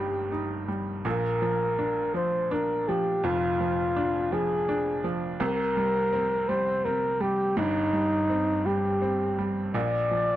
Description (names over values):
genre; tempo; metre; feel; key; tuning
pop; 55 BPM (dotted quarters); 6/8; straight; C minor; A4 = 440 Hz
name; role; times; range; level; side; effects
breathy flugelhorn; melody; 0.0-10.4 s; Eb4 to D5; -26 LUFS; equal; none
bright upright piano; accompaniment; 0.0-10.4 s; F1 to Eb4; -28 LUFS; right 1 dB; none
room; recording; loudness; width
light reverb; dry, close 1970s-style studio recording; -24 LUFS; side -13 dB against mid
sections
0.0-10.4 A section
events
none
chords
0.0 Cm; 1.1 Bb; 5.4 Cm; 9.8 Bb